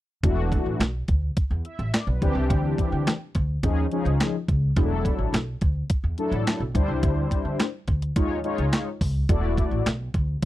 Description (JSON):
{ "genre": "early-eighties boogie funk", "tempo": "106 BPM", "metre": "4/4", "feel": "straight", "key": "E minor", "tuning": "A4 = 440 Hz", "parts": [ { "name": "mellow synth brass", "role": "accompaniment", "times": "0.2-9.9 s", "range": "E3 to E5", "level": "-27 LUFS", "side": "left 2 dB", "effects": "chorus" }, { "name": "upright bass", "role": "bass", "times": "0.2-10.5 s", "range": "E1 to D3", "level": "-25 LUFS", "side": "equal", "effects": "none" }, { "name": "crisp 8-bit digital drum machine", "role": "drums", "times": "0.2-10.5 s", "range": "handclaps, hi-hat, kick drum, snare drum", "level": "-24 LUFS", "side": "equal", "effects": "overdrive" } ], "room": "little or no reverb", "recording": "dry, close 1970s-style studio recording", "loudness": "-22 LUFS", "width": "side -15 dB against mid", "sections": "0.2-10.5 A section", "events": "none", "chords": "0.2 E9sus4; 2.2 D9sus4; 3.6 D#9sus4; 4.8 E9sus4; 6.7 D9sus4; 8.2 D#9sus4; 9.3 E9sus4" }